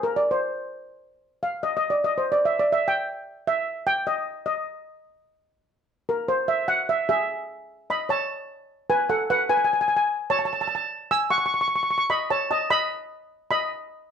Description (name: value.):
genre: calypso.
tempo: 149 BPM.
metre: 4/4.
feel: straight.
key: unclear.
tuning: A4 = 440 Hz.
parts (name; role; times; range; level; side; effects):
steel pan; solo; 0.0-14.1 s; Ab4 to E6; -22 LUFS; equal; none.
room: moderate studio reverb, RT60 0.8 s.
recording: band playing live in one room.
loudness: -22 LUFS.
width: side -7 dB against mid.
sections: 0.0-7.3 A section; 7.3-14.1 B section.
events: steel pan solo 0.0-7.3.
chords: 0.0 N.C.; 7.3 Amaj7; 8.9 Amaj7sus2; 10.5 F#m7 (rootless); 12.1 B.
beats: 0.01 0.41 | 0.82 1.22 1.63 2.03 | 2.44 2.84 3.24 3.65 | 4.05 4.46 4.86 5.26 | 5.67 6.07 6.47 6.87 | 7.28 7.68 8.08 8.48 | 8.88 9.29 9.69 10.09 | 10.49 10.89 11.29 11.69 | 12.10 12.50 12.90 13.30 | 13.70.